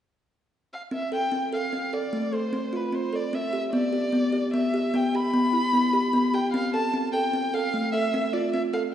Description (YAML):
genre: contemporary instrumental, contemporary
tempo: 149 BPM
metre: 7/4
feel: straight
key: F lydian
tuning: A4 = 443 Hz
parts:
  - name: dark violin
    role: melody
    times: 0.7-8.8 s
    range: B4 to B5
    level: -27 LUFS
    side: equal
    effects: none
  - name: kalimba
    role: arpeggios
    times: 0.9-8.9 s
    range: A3 to A4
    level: -25 LUFS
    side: equal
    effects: none
room: wet scoring stage reverb, RT60 2.0 s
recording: heard from further back in the room, nothing above 10.9 kHz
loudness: -23 LUFS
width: side -10 dB against mid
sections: 0.9-8.9 A section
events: none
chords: 0.0 N.C.; 0.9 F (rootless); 3.7 Em7 (rootless); 6.5 Fmaj7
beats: 0.10 0.50 | 0.91 1.32 1.72 2.13 2.53 2.93 3.33 | 3.74 4.14 4.54 4.94 5.34 5.74 6.14 | 6.54 6.94 7.34 7.74 8.14 8.54